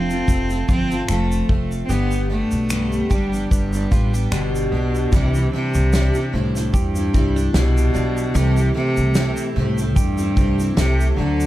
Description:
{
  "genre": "acoustic pop",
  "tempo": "74 BPM",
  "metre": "4/4",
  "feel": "swing 55% on 16ths",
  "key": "C major",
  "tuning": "A4 = 440 Hz",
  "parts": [
    { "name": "clear cello", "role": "melody", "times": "0.0-11.5 s", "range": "G2 to C4", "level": "-22 LUFS", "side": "equal", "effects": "none" },
    { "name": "picked steel-string acoustic guitar", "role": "accompaniment", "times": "0.0-11.5 s", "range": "G2 to A4", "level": "-25 LUFS", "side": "equal", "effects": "double-tracked left and right" },
    { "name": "direct-recorded clean electric guitar", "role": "arpeggios", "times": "0.0-11.5 s", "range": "E3 to G4", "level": "-32 LUFS", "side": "right 5 dB", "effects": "digital delay" },
    { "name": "upright bass", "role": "bass", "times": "0.0-11.5 s", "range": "F1 to E2", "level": "-21 LUFS", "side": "equal", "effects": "none" },
    { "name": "natural country drum kit", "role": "drums", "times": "0.1-11.5 s", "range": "finger snaps, kick drum, shaker, snare drum", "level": "-21 LUFS", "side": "equal", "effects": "none" }
  ],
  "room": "little or no reverb",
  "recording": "dark, warm production",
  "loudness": "-17 LUFS",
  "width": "side -15 dB against mid",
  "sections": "0.0-5.1 A section; 5.1-11.5 B section",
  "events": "none",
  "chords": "0.0 F; 1.9 G; 5.1 Cadd9; 8.4 Am7/C"
}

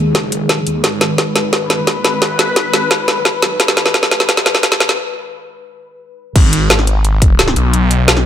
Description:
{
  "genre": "dark technical drum and bass",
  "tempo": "174 BPM",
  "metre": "4/4",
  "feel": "straight",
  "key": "G# minor",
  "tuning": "A4 = 440 Hz",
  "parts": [
    { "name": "sweeping resonant pad", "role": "sustained chords", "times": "0.0-6.3 s", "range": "D#3 to B4", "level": "-20 LUFS", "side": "left 1 dB", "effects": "chorus, sidechain pumping" },
    { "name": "phased detuned saw bass", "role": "bass", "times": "0.0-8.3 s", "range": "F#1 to D#2", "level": "-18 LUFS", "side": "equal", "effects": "phaser, sidechain pumping" },
    { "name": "drum and bass drum kit", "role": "drums", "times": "0.1-8.2 s", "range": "crash cymbal, hi-hat, snare drum", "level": "-13 LUFS", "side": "equal", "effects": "none" },
    { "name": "electronic kick drum", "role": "drums", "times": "0.1-7.3 s", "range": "none", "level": "-14 LUFS", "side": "equal", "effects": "high-pass filter on kick, high-pass filter on room" }
  ],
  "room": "light reverb",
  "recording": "high-pass filter",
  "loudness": "-11 LUFS",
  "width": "side -10 dB against mid",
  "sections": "0.0-6.4 A section; 6.4-8.3 B section",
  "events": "build-up 0.0-6.4; drum fill 0.0-5.0; filter sweep 0.0-6.4; break 5.0-6.4; drop 6.4-8.3",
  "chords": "0.0 G#5"
}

